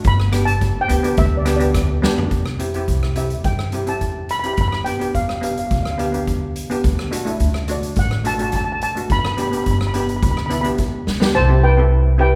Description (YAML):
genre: calypso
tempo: 106 BPM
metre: 4/4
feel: straight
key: C major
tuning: A4 = 436 Hz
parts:
  - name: steel pan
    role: accompaniment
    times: 0.0-12.4 s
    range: A3 to A4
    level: -26 LUFS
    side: equal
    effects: none
  - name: upright bass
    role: bass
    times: 0.0-12.4 s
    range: G1 to G2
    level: -22 LUFS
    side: equal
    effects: none
  - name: street-band drum kit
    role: drums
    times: 0.0-11.3 s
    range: hi-hat, kick drum, rim click, snare drum, toms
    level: -25 LUFS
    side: equal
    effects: none
  - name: steel pan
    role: melody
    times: 0.1-12.4 s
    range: B4 to B5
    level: -25 LUFS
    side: equal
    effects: none
room: moderate recital hall reverb, RT60 1.7 s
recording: recorded in a church or concert hall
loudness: -19 LUFS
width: mono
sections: 0.0-2.3 A section; 2.3-11.4 B section; 11.4-12.4 C section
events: steel pan solo 0.0-2.3; drum fill 2.0, 11.1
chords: 0.1 G; 2.3 C; 4.6 G; 6.8 D; 9.1 G6; 11.4 C